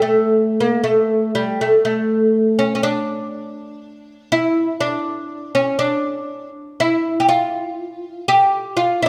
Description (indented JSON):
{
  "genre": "arabic",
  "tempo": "122 BPM (eighths)",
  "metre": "10/8",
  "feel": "straight",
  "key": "A maqam hijaz",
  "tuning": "A4 = 441 Hz",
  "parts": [
    { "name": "oud", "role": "solo", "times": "0.0-9.1 s", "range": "G3 to G4", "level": "-19 LUFS", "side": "equal", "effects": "none" }
  ],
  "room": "moderate recital hall reverb, RT60 1.5 s",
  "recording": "none",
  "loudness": "-18 LUFS",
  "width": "mono",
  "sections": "0.0-9.1 A section",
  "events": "none",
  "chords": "none",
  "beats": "0.36 0.85 1.34 | 1.84 2.33 2.82 3.32 3.81 4.30 4.80 5.29 5.78 6.28 | 6.77 7.26 7.76 8.25 8.75"
}